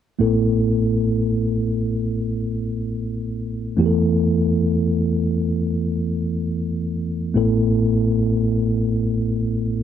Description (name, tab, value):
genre	pop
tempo	free time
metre	none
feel	none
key	unclear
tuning	A4 = 445 Hz
part	mellow tine electric piano	solo	0.2-9.8 s	A1 to A4	-18 LUFS	equal	medium stereo tremolo
room	little or no reverb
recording	dry, close 1970s-style studio recording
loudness	-18 LUFS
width	side -9 dB against mid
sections	0.2-9.8 A section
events	none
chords	0.2 Asus2; 3.8 Esus4; 7.4 Asus2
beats	free time